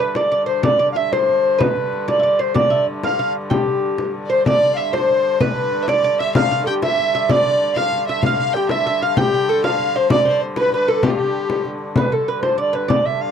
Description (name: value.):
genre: medieval dance.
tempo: 127 BPM (dotted quarters).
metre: 6/8.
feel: straight.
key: G mixolydian.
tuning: A4 = 441 Hz.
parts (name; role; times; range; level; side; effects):
reedy bass recorder; melody; 0.0-13.3 s; G4 to F5; -18 LUFS; equal; none.
lute; second line; 0.0-13.3 s; G4 to G5; -25 LUFS; right 5 dB; none.
rich hurdy-gurdy; drone; 0.0-13.3 s; G2 to D3; -28 LUFS; left 1 dB; none.
frame drum; percussion; 0.2-13.1 s; none; -21 LUFS; left 4 dB; none.
warm fiddle; second line; 4.3-11.7 s; F4 to G5; -25 LUFS; left 5 dB; none.
room: light reverb.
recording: dry, close 1970s-style studio recording.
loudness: -15 LUFS.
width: side -8 dB against mid.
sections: 0.0-4.5 A section; 4.5-12.0 A section; 12.0-13.3 B section.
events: speeding up 0.0-13.3.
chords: none.